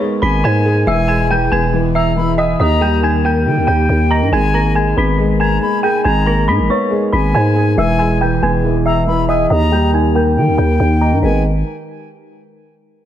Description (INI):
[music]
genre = hip hop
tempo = 139 BPM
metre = 4/4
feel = half-time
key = G# harmonic minor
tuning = A4 = 441 Hz
[part]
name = dark baby grand piano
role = accompaniment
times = 0.0-11.4 s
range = D#3 to E5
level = -19 LUFS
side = left 1 dB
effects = low-pass filter
[part]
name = airy breathy pad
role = sustained chords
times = 0.0-11.4 s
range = D#3 to A#4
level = -23 LUFS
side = left 1 dB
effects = chorus, low-pass filter
[part]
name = dark detuned synth bell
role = melody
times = 0.2-11.4 s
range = C#5 to B6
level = -18 LUFS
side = equal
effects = chorus, low-pass filter, ping-pong delay
[part]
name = silver concert flute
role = second line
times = 0.2-11.4 s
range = G5 to B5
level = -23 LUFS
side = left 2 dB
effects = ping-pong delay
[part]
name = growling 808-style bass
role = bass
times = 0.2-11.6 s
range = E1 to D#3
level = -15 LUFS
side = equal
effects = none
[sound]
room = light reverb, small room ambience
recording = none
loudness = -12 LUFS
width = side -11 dB against mid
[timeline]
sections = 0.0-11.2 A section; 11.2-13.0 B section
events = filter sweep 0.0-11.2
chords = 0.0 G#madd9; 0.9 E; 2.6 D#; 4.3 G#madd9; 7.8 E; 9.5 D#; 11.2 G#madd9